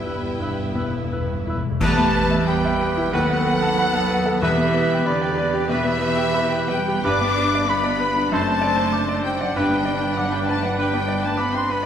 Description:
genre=classical, romantic movement for piano and orchestra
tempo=93 BPM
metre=4/4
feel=uneven beats, rubato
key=E minor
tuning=A4 = 439 Hz
part: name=clear baby grand piano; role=melody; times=0.0-11.9 s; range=D#2 to D6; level=-24 LUFS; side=left 2 dB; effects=none
part: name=rich studio violin section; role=melody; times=0.0-11.9 s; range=D5 to D6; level=-34 LUFS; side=left 2 dB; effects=none
part: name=rich studio violin section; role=second line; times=0.0-11.9 s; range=B4 to D6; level=-29 LUFS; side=equal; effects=none
part: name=rich studio viola section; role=accompaniment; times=0.0-11.9 s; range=B3 to C5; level=-30 LUFS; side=right 1 dB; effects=none
part: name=mellow French horn section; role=sustained chords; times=0.0-11.0 s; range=G3 to D4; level=-34 LUFS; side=left 4 dB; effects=none
part: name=rich studio double bass section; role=bass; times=0.0-11.9 s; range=F#1 to E2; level=-30 LUFS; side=right 5 dB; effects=none
part: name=warm studio cello section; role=bass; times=0.0-11.9 s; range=G2 to D4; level=-28 LUFS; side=right 4 dB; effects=none
part: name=timpani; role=percussion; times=0.0-5.3 s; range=E2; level=-30 LUFS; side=left 3 dB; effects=none
part: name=clear oboe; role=second line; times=0.1-11.9 s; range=B4 to C5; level=-30 LUFS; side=equal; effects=none
part: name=concert flute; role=second line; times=0.1-11.9 s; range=D5 to E6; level=-26 LUFS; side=left 2 dB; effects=none
part: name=warm clarinet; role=second line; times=0.1-11.9 s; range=D4 to A4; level=-31 LUFS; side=equal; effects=none
part: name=clear trumpet section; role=stabs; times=1.8-11.0 s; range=B4 to C5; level=-30 LUFS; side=right 1 dB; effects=none
part: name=clash cymbals and concert bass drum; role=percussion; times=1.8-3.1 s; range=none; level=-30 LUFS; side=equal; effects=none
room=moderate concert hall reverb, RT60 2.0 s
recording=none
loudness=-18 LUFS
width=side -8 dB against mid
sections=0.0-1.8 A section; 1.8-11.9 B section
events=timpani fill 0.0-1.8; band accent 1.8-2.5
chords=0.0 Em/G; 1.8 Em; 3.1 B7/D#; 4.4 Em; 7.0 G; 8.3 D7/F#; 9.6 G

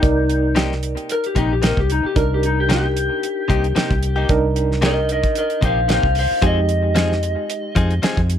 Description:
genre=straight-eighth soul blues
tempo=112 BPM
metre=4/4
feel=swing 54% on 16ths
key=C minor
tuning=A4 = 440 Hz
part: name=electric slide guitar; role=melody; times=0.0-8.0 s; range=Eb4 to F5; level=-21 LUFS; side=left 3 dB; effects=plate reverb
part: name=barky reed electric piano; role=accompaniment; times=0.0-8.4 s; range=Ab3 to D5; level=-25 LUFS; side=right 6 dB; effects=tremolo, plate reverb
part: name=direct-recorded clean electric guitar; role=stabs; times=0.0-8.2 s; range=C3 to Ab4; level=-26 LUFS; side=left 4 dB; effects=plate reverb, analog delay
part: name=vintage muted fingered electric bass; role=bass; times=0.0-8.4 s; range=Bb1 to F2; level=-20 LUFS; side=equal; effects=none
part: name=damped 70s drum kit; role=drums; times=0.0-8.4 s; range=hi-hat, kick drum, snare drum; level=-21 LUFS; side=equal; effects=none
room=light reverb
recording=none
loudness=-16 LUFS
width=side -9 dB against mid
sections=0.0-8.4 A section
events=electric slide guitar solo 0.0-8.4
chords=0.0 Cm7; 6.4 Fm7

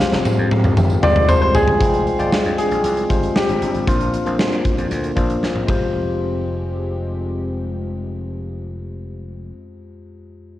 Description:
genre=1980s-style pop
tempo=116 BPM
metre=4/4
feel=straight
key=F dorian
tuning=A4 = 442 Hz
part: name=clear baby grand piano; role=melody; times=0.0-5.4 s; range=F4 to F5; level=-21 LUFS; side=equal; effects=cassette tape, analog delay
part: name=bell-like tine electric piano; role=accompaniment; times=0.0-10.6 s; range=F2 to G5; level=-23 LUFS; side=left 3 dB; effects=cassette tape
part: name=chorused pulse-width pad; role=sustained chords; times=0.0-9.5 s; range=F3 to G5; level=-30 LUFS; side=equal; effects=cassette tape
part: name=gritty slap bass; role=bass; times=0.0-9.5 s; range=F1 to Bb2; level=-26 LUFS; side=equal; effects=overdrive
part: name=huge arena drum kit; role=drums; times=0.0-5.8 s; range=hi-hat, kick drum, ride cymbal, snare drum, toms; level=-19 LUFS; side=equal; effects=cassette tape
part: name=tambourine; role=percussion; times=0.1-1.7 s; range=none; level=-42 LUFS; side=right 5 dB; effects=none
room=moderate digital room reverb, RT60 1.2 s, small room ambience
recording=home recording on cassette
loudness=-16 LUFS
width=side -14 dB against mid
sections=0.0-1.8 A section; 1.8-5.9 B section; 5.9-10.1 C section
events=drum fill 0.0-1.8, 5.4-5.9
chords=0.0 Fmadd9; 3.9 Bbadd9; 5.7 Fmadd9

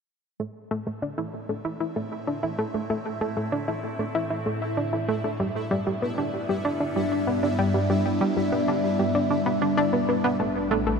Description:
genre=ambient, sequencer-driven space music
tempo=96 BPM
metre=4/4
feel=straight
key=A minor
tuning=A4 = 440 Hz
part: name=evolving wavetable pad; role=sustained chords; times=1.1-11.0 s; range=G2 to E5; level=-28 LUFS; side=left 1 dB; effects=phaser, built-in reverb, shimmer reverb
part: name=analog pluck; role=riff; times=0.4-11.0 s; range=G3 to E4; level=-26 LUFS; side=equal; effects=chorus, tape echo, shimmer reverb
part: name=pulsing gated texture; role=texture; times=2.9-11.0 s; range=E4 to E5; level=-34 LUFS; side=right 2 dB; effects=chorus, built-in reverb, shimmer reverb
part: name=warm sub bass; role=bass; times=10.4-11.0 s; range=A1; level=-33 LUFS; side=equal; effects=tube saturation
room=wet huge ambient reverb, RT60 8.9 s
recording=none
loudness=-23 LUFS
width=side -5 dB against mid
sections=0.4-10.4 A section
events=fade-in on ambient pad 0.4-10.4; fade-in on synth texture 0.4-10.4; filter sweep on synth arpeggio sound 0.4-10.4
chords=0.4 Am; 5.4 G; 10.4 Am

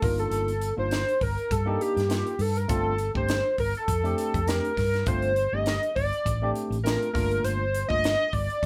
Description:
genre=electric jazz fusion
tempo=101 BPM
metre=4/4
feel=swing 55% on 16ths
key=G minor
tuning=A4 = 444 Hz
part: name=hollow square lead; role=melody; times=0.0-8.7 s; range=G4 to Eb5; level=-29 LUFS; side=equal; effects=chorus
part: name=barky tine electric piano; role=accompaniment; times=0.0-8.7 s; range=A3 to G4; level=-35 LUFS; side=equal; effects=none
part: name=hollow-body short-scale fingered electric bass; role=bass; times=0.0-8.7 s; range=G1 to G2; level=-32 LUFS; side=equal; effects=none
part: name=crisp fusion drum kit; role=drums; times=0.0-8.7 s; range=hi-hat, kick drum, snare drum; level=-34 LUFS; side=equal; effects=none
room=light reverb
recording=band playing live in one room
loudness=-26 LUFS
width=mono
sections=0.0-8.7 A section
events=none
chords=0.0 Gm11; 7.1 Gm9

